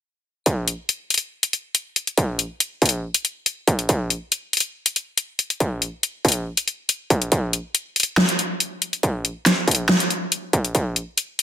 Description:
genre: heavy wobble dubstep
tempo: 140 BPM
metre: 4/4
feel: half-time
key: none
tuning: none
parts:
  - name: dubstep drum kit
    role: drums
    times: 0.5-11.4 s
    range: hi-hat, snare drum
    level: -19 LUFS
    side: left 1 dB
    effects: none
  - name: electronic kick drum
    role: drums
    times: 0.5-10.8 s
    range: none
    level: -21 LUFS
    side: right 1 dB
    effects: distortion, high-pass filter on kick
room: light reverb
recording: dense, heavily limited modern master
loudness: -20 LUFS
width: side -9 dB against mid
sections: 0.5-11.4 A section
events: none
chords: none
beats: | 0.46 0.89 1.32 1.75 | 2.17 2.60 3.03 3.46 | 3.89 4.32 4.75 5.17 | 5.60 6.03 6.46 6.89 | 7.32 7.75 8.18 8.60 | 9.03 9.46 9.89 10.32 | 10.75 11.18

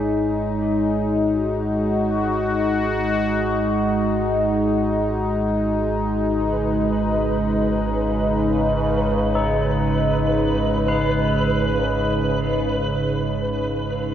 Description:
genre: dark ambient drone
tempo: free time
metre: none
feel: none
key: G# minor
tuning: A4 = 444 Hz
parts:
  - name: sweeping resonant pad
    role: sustained chords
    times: 0.0-14.1 s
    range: C#3 to G#4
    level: -20 LUFS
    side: equal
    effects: chorus
  - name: tubular bells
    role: arpeggios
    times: 0.0-14.1 s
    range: C#4 to B4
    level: -31 LUFS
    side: left 3 dB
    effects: diffuse ambient delay
  - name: deep rumbling drone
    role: drone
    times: 0.0-14.1 s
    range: G#1 to G#2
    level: -27 LUFS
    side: equal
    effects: built-in reverb, wide subtle chorus
  - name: flickering grainy texture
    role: texture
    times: 6.5-14.1 s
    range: B4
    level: -26 LUFS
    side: right 1 dB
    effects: built-in reverb
room: wet cathedral reverb, RT60 5.8 s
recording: none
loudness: -18 LUFS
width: side -10 dB against mid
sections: 0.0-14.1 A section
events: fade-in on synth drone 0.0-14.1; fade-in on tubular bells 0.0-14.1; fade-out 11.6-14.1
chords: 0.0 G#m7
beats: free time

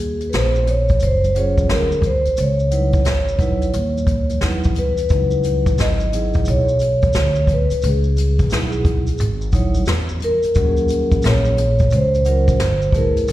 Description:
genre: hip hop, jazz-hop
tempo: 88 BPM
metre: 4/4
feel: swing 65% on 16ths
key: C# minor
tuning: A4 = 440 Hz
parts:
  - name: vibraphone with soft mallets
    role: melody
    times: 0.0-13.3 s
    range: G#4 to D#5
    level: -20 LUFS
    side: equal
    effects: slapback echo
  - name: upright bass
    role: bass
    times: 0.0-13.3 s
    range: F#1 to E2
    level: -19 LUFS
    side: equal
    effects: none
  - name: jazz brush drum kit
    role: drums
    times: 0.2-13.3 s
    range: hi-hat, kick drum, snare drum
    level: -20 LUFS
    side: equal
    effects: none
  - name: maracas and congas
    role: percussion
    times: 0.2-13.3 s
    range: none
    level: -34 LUFS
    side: left 2 dB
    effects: slapback echo
  - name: vibraphone with soft mallets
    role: accompaniment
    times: 1.3-13.2 s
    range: F#3 to C#5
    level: -26 LUFS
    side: right 2 dB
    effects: slapback echo
room: little or no reverb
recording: live gig heard through the venue's PA, recital hall reverb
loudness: -15 LUFS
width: side -14 dB against mid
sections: 0.0-5.1 A section; 5.1-13.3 B section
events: none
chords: 0.0 D#m11; 2.4 C#m11; 10.6 D#m11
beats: 0.33 1.01 1.70 | 2.38 3.06 3.74 4.42 | 5.10 5.79 6.47 7.15 | 7.83 8.51 9.20 9.88 | 10.56 11.24 11.92 12.60 | 13.29

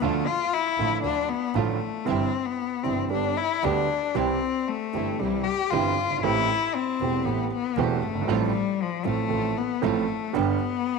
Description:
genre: tango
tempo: 116 BPM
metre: 4/4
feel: rubato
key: C major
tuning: A4 = 440 Hz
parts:
  - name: rich cello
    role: second line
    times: 0.0-11.0 s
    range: F3 to G4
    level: -26 LUFS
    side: left 10 dB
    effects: none
  - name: warm concert grand piano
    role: accompaniment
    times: 0.0-10.6 s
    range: E1 to A4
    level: -28 LUFS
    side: right 12 dB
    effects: none
  - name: warm chamber string section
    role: stabs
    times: 0.0-10.6 s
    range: A3 to G4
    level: -35 LUFS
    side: right 11 dB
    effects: none
  - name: dark double bass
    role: bass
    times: 0.0-10.6 s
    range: E1 to D2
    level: -33 LUFS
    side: right 2 dB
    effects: none
room: moderate plate reverb, RT60 2.8 s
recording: 1960s-style stereo with parts hard left and right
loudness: -23 LUFS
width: side -4 dB against mid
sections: 0.0-11.0 A section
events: cello solo 0.0-11.0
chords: 0.0 Dm; 2.1 C/G; 3.1 G; 4.2 C; 6.2 Am7; 8.3 F/A; 10.3 G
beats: | 0.02 0.53 1.04 1.55 | 2.07 2.59 3.11 3.63 | 4.15 4.67 5.19 5.71 | 6.23 6.75 7.26 7.77 | 8.28 8.79 9.31 9.83 | 10.34 10.86

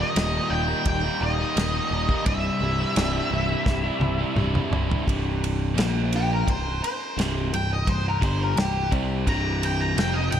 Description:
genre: classic rock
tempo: 86 BPM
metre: 4/4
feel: straight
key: unclear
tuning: A4 = 440 Hz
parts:
  - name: octave-fuzz lead guitar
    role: melody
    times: 0.0-10.4 s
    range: G4 to Bb5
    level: -28 LUFS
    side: left 1 dB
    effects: distortion, tape echo
  - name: crunchy overdriven guitar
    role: riff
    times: 0.0-10.4 s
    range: C2 to E4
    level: -27 LUFS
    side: equal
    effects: none
  - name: picked electric bass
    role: bass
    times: 0.0-10.4 s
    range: C1 to C2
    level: -27 LUFS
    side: equal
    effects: none
  - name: damped 70s drum kit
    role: drums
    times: 0.2-10.4 s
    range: kick drum, ride cymbal, snare drum, toms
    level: -28 LUFS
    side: equal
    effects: none
room: moderate lush hall reverb, RT60 2.2 s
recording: big arena sound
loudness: -22 LUFS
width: side -9 dB against mid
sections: 0.0-5.1 A section; 5.1-10.4 B section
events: drum fill 3.7-5.1; lead electric guitar solo 5.1-10.4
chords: 0.0 Eb; 2.3 C; 5.1 C5; 5.8 Bb5; 6.5 C5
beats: 0.16 0.86 1.56 | 2.27 2.97 3.67 4.37 | 5.07 5.77 6.47 7.17 | 7.87 8.57 9.27 9.96

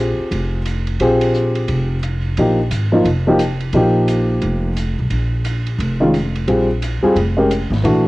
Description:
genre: modal jazz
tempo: 175 BPM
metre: 4/4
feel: swing 62% on 8ths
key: unclear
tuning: A4 = 440 Hz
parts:
  - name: dark upright piano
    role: accompaniment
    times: 0.0-8.1 s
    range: Eb3 to Bb4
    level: -16 LUFS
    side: equal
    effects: none
  - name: upright bass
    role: bass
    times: 0.0-8.1 s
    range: F1 to Cb2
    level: -19 LUFS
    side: equal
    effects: none
  - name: open jazz drum kit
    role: drums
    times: 0.3-7.9 s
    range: hi-hat, ride cymbal, snare drum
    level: -30 LUFS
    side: right 3 dB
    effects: cassette tape
room: light reverb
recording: home recording on cassette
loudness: -15 LUFS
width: side -19 dB against mid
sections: 0.0-8.1 A section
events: none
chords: 0.0 Bb9sus4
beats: 0.32 0.66 | 1.00 1.34 1.69 2.03 | 2.37 2.71 3.06 3.40 | 3.74 4.08 4.42 4.77 | 5.11 5.45 5.79 6.13 | 6.48 6.82 7.16 7.50 | 7.84

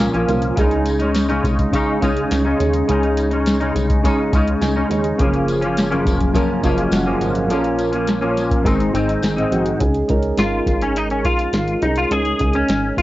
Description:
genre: indie pop, bedroom pop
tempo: 104 BPM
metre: 4/4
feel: straight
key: Db major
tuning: A4 = 440 Hz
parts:
  - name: semi-hollow electric guitar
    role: accompaniment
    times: 0.0-13.0 s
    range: Gb2 to Ab4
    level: -19 LUFS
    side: left 2 dB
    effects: ensemble chorus, vibrato effect, cassette tape
  - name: soft electric-piano-like synth keys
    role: accompaniment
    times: 0.0-13.0 s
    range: Ab3 to Ab5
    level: -22 LUFS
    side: right 3 dB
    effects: chorus, phaser, cassette tape
  - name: plucky analog bass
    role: bass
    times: 0.0-13.0 s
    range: F1 to Eb2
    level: -23 LUFS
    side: equal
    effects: none
  - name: soft vintage rhythm box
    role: drums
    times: 0.0-13.0 s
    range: hi-hat, kick drum, snare drum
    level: -21 LUFS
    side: equal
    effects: overdrive, cassette tape
  - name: tambourine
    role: percussion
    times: 0.3-9.4 s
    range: none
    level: -39 LUFS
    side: left 5 dB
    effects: none
room: light reverb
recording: home recording on cassette, nothing above 7.6 kHz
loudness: -16 LUFS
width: side -16 dB against mid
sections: 0.0-9.8 A section; 9.8-13.0 B section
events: synth keys fill 4.0-5.2; clean electric guitar solo 9.8-13.0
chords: 0.0 Bbm; 0.6 Dbsus2; 5.2 Gbmaj7; 7.5 Bbm; 8.7 Ab; 9.8 Dbsus2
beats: 0.00 | 0.58 1.16 1.73 2.31 | 2.88 3.46 4.04 4.62 | 5.19 5.77 6.35 6.92 | 7.50 8.08 8.65 9.23 | 9.81 10.38 10.96 11.54 | 12.11 12.69

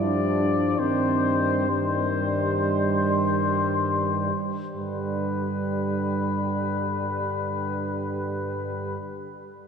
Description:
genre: classical, hymn-like piece for brass band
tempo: 52-69 BPM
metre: 4/4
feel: rubato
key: G major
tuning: A4 = 441 Hz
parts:
  - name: warm cornet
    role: melody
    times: 0.0-9.0 s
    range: B4 to D5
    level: -28 LUFS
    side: left 6 dB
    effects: none
  - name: mellow French horn section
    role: second line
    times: 0.0-9.0 s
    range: G3 to D4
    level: -29 LUFS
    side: right 4 dB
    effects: none
  - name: clear trombone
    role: accompaniment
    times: 0.0-9.0 s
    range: D3 to F3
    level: -33 LUFS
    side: right 1 dB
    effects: none
  - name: warm euphonium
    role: accompaniment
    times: 0.0-9.0 s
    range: G3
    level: -31 LUFS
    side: right 1 dB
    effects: none
  - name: mellow tuba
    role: bass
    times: 0.0-9.0 s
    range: G2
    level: -30 LUFS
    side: equal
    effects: none
room: wet church reverb, RT60 3.2 s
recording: none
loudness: -23 LUFS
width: side -6 dB against mid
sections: 0.0-4.8 A section; 4.8-9.0 B section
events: slowing down 0.0-4.8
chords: 0.0 G7(no3); 0.8 Cm/G; 4.8 G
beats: | 0.78 1.68 2.62 3.65 | 4.76 5.83 6.90 7.95

